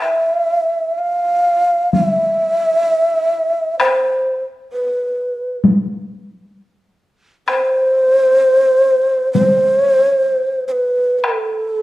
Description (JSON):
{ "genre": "japanese traditional, Japanese chamber music", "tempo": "64 BPM", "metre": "4/4", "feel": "rubato", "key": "unclear", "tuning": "A4 = 441 Hz", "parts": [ { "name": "breathy mellow long shakuhachi", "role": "melody", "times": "0.0-11.8 s", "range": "A4 to F5", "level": "-14 LUFS", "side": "equal", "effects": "none" }, { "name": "taiko ensemble", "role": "percussion", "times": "1.9-11.5 s", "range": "none", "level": "-17 LUFS", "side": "left 1 dB", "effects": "none" } ], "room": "moderate recital hall reverb, RT60 1.4 s", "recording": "dark, warm production", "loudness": "-13 LUFS", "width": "side -17 dB against mid", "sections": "0.0-11.8 A section", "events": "none", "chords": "none", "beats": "0.96 1.93 2.88 | 3.80 4.72 5.64 6.56 | 7.48 8.42 9.36 10.29 | 11.24" }